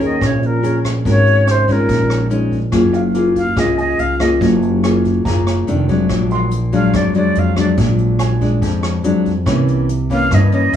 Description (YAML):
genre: bossa nova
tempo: 142 BPM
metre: 4/4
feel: straight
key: unclear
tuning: A4 = 439 Hz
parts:
  - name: jazz flute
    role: melody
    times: 0.0-10.8 s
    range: Bb4 to F5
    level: -19 LUFS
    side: equal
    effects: plate reverb
  - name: warm trombone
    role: second line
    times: 0.0-2.3 s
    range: Bb2 to Eb3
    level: -24 LUFS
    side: right 4 dB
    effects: none
  - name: nylon-string guitar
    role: accompaniment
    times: 0.0-10.8 s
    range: F2 to Bb4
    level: -17 LUFS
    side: left 3 dB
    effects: none
  - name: upright bass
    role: bass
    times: 0.0-10.8 s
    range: F1 to G2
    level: -17 LUFS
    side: right 1 dB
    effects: none
  - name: jazz brush drum kit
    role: drums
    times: 0.0-10.8 s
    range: hi-hat, kick drum, rim click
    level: -24 LUFS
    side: right 1 dB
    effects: none
  - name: warm grand piano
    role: accompaniment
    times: 2.9-9.5 s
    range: F5 to C6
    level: -30 LUFS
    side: right 4 dB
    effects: none
room: light reverb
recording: small room ambience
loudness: -13 LUFS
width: side -9 dB against mid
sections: 0.0-2.7 A section; 2.7-10.8 B section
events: flute solo 2.7-10.8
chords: 0.0 Eb7sus4; 1.1 Ab9sus4; 1.9 Bbm7; 2.7 Gbmaj9; 5.7 F6; 6.1 Bb7b13; 9.5 C7b9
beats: 0.21 0.63 | 1.05 1.47 1.89 2.31 | 2.73 3.15 3.58 4.00 | 4.42 4.84 5.26 5.68 | 6.10 6.52 6.94 7.36 | 7.78 8.20 8.63 9.05 | 9.47 9.89 10.31 10.73